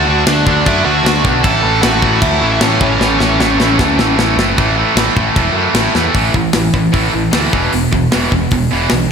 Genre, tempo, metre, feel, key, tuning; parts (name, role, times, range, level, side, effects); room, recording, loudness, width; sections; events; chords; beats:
punk rock; 153 BPM; 4/4; straight; A major; A4 = 440 Hz
smooth overdriven lead guitar; melody; 0.0-4.2 s; C#4 to A5; -18 LUFS; equal; slapback echo, tape echo
tight distorted guitar; riff; 0.0-9.1 s; E2 to D4; -17 LUFS; left 10 dB; distortion, slapback echo
tight distorted guitar; riff; 0.0-9.1 s; E2 to D4; -16 LUFS; right 9 dB; distortion, slapback echo
growling picked electric bass; bass; 0.0-9.1 s; E1 to F#2; -18 LUFS; equal; overdrive
tight metal drum kit; drums; 0.3-9.0 s; crash cymbal, hi-hat, kick drum, snare drum; -17 LUFS; left 1 dB
moderate concert hall reverb, RT60 1.9 s, small room ambience; big arena sound; -10 LUFS; side -6 dB against mid
0.0-4.6 A section; 4.6-6.2 B section; 6.2-9.1 C section
drum fill 3.0-4.6, 6.0
0.0 D; 1.4 A; 4.6 A5; 7.5 E5
0.26 0.66 1.05 | 1.44 1.83 2.23 2.62 | 3.01 3.40 3.79 4.19 | 4.58 4.97 5.37 5.76 | 6.15 6.55 6.94 7.34 | 7.73 8.12 8.52 8.91